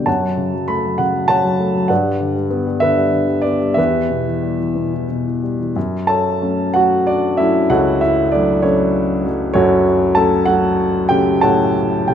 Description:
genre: classical, lyrical solo piano.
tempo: 60-67 BPM (dotted quarters).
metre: 6/8.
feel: rubato.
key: unclear.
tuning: A4 = 440 Hz.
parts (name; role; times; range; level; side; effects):
dark baby grand piano; solo; 0.0-12.1 s; C#2 to B5; -14 LUFS; equal; none.
room: moderate recital hall reverb, RT60 1.5 s.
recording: minimal, uncompressed stereo recording.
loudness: -14 LUFS.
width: side -8 dB against mid.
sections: 0.0-5.8 A section; 5.8-12.1 B section.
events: none.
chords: 0.1 F#m; 1.9 Em7/G; 3.8 Em; 5.8 F#m.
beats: | 0.07 0.99 | 1.90 2.82 | 3.78 4.77 | 5.76 6.74 | 7.71 8.65 | 9.55 10.47 | 11.43.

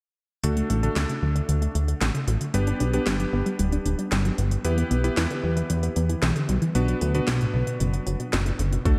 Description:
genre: italo disco.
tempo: 114 BPM.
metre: 4/4.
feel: straight.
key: D major.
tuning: A4 = 442 Hz.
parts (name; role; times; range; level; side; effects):
analog pluck; arpeggios; 0.4-8.9 s; A2 to D4; -31 LUFS; equal; chorus, phaser, delay.
clear electric grand piano; stabs; 0.4-9.0 s; A3 to B4; -32 LUFS; equal; low-pass filter, delay.
fat analog bass; bass; 0.4-9.0 s; D1 to E2; -26 LUFS; equal; tube saturation.
house drum kit; drums; 0.4-9.0 s; hi-hat, snare drum; -34 LUFS; equal; none.
electronic kick drum; drums; 8.9-9.0 s; none; -22 LUFS; equal; none.
room: moderate lush hall reverb, RT60 2.5 s.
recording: dark, warm production.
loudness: -24 LUFS.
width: mono.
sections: 0.4-9.0 A section.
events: filter sweep on synth arpeggio sound 0.4-9.0.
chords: 0.4 D; 2.5 G; 4.6 Em; 6.8 Bm.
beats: | 0.43 0.96 1.49 2.01 | 2.54 3.07 3.59 4.12 | 4.65 5.17 5.70 6.22 | 6.75 7.28 7.80 8.33 | 8.86.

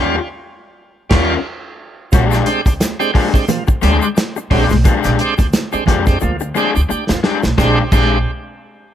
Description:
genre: funk.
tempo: 88 BPM.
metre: 4/4.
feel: swing 56% on 16ths.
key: Bb mixolydian.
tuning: A4 = 443 Hz.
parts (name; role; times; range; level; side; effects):
crunchy overdriven guitar; accompaniment; 0.0-8.1 s; Ab3 to Bb4; -19 LUFS; left 8 dB; harmonic tremolo.
bright tonewheel organ; stabs; 0.0-8.2 s; Bb2 to G4; -20 LUFS; right 4 dB; overdrive, slow rotary speaker, slapback echo.
upright bass; bass; 0.0-8.2 s; Bb1 to F2; -17 LUFS; right 1 dB; none.
warm soul drum kit; drums; 1.1-8.1 s; crash cymbal, hi-hat, kick drum, snare drum; -16 LUFS; equal; none.
tube shaker; percussion; 2.1-8.2 s; none; -33 LUFS; left 7 dB; none.
congas; percussion; 2.8-8.2 s; none; -24 LUFS; right 4 dB; none.
room: little or no reverb.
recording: none.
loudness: -13 LUFS.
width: side -10 dB against mid.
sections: 0.0-2.1 A section; 2.1-7.6 B section; 7.6-8.9 C section.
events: band accent 0.0-2.1; drum fill 6.2-7.6.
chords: 0.0 Eb9; 2.1 Bb13.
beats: 0.09 0.77 1.45 | 2.13 2.81 3.49 4.17 | 4.86 5.54 6.22 6.90 | 7.58.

